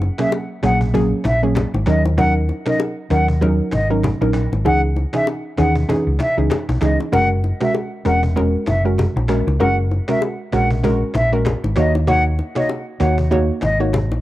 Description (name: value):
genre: afrobeats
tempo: 97 BPM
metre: 4/4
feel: swing 58% on 16ths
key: unclear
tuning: A4 = 440 Hz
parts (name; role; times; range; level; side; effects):
- hollow-body short-scale fingered electric bass; bass; 0.0-14.2 s; E1 to D#2; -18 LUFS; equal; none
- cajon; drums; 0.0-14.1 s; none; -28 LUFS; equal; cassette tape
- bongos and congas; percussion; 0.0-14.2 s; none; -25 LUFS; left 3 dB; none
- silver concert flute; melody; 0.2-13.8 s; D#5 to F#5; -22 LUFS; equal; cassette tape
- soft round pluck; accompaniment; 0.2-13.9 s; E3 to C#5; -20 LUFS; right 1 dB; chorus, cassette tape
room: small room ambience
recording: home recording on cassette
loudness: -15 LUFS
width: side -15 dB against mid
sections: 0.0-14.2 A section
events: none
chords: 0.0 F#add9; 1.9 D#m7; 4.7 C#madd9; 7.1 F#add9; 11.8 D#m7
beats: 0.32 0.94 1.56 | 2.18 2.80 3.42 4.03 | 4.65 5.27 5.89 6.51 | 7.13 7.75 8.36 8.98 | 9.60 10.22 10.84 11.46 | 12.07 12.69 13.31 13.93